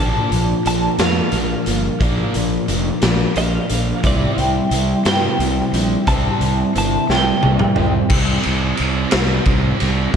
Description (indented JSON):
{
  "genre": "quiet-loud alternative rock",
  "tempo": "59 BPM (dotted quarters)",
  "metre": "6/8",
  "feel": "straight",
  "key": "unclear",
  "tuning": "A4 = 439 Hz",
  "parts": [
    { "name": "twelve-string electric guitar", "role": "melody", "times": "0.0-8.1 s", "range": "D5 to A5", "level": "-23 LUFS", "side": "equal", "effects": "tremolo, slapback echo, analog delay" },
    { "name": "picked steel-string acoustic guitar", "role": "arpeggios", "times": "0.0-8.1 s", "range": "Bb2 to C5", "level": "-24 LUFS", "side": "left 1 dB", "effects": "slapback echo" },
    { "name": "scooped high-gain guitar", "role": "riff", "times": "0.0-10.2 s", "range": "Bb2 to C4", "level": "-26 LUFS", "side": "left 9 dB", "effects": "distortion" },
    { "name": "scooped high-gain guitar", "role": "riff", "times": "0.0-10.2 s", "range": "Bb2 to C4", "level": "-24 LUFS", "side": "right 11 dB", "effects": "distortion, slapback echo" },
    { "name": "fuzz fingered electric bass", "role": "bass", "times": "0.0-10.2 s", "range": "F1 to G2", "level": "-21 LUFS", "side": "equal", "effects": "overdrive" },
    { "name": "raw garage drum kit", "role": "drums", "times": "0.3-10.2 s", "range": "crash cymbal, hi-hat, kick drum, ride cymbal, snare drum, toms", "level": "-20 LUFS", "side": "equal", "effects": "none" }
  ],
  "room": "moderate concert hall reverb, RT60 1.9 s, small room ambience",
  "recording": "big arena sound",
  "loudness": "-15 LUFS",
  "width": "side -7 dB against mid",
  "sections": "0.0-8.1 A section; 8.1-10.2 B section",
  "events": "clean electric guitar solo 0.0-8.1; drum fill 7.1-8.1",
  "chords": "0.0 Bb; 4.0 C; 8.1 C5"
}